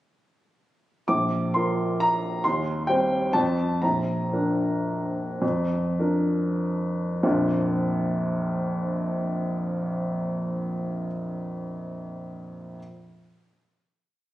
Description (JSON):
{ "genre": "classical, piano waltz", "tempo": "94-144 BPM", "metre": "3/4", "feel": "rubato", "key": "Bb major", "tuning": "A4 = 439 Hz", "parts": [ { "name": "warm baby grand piano", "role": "solo", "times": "1.1-12.8 s", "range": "Bb1 to D6", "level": "-24 LUFS", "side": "equal", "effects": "none" } ], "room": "wet recital hall reverb, RT60 1.7 s", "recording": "recorded on a phone in the room, club reverb, compression", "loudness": "-23 LUFS", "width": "side -15 dB against mid", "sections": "1.1-7.2 A section; 7.2-10.7 final chord", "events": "slowing down 3.1-7.2", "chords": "1.1 Bb; 2.4 Cm/Eb; 3.3 F; 3.8 Bb" }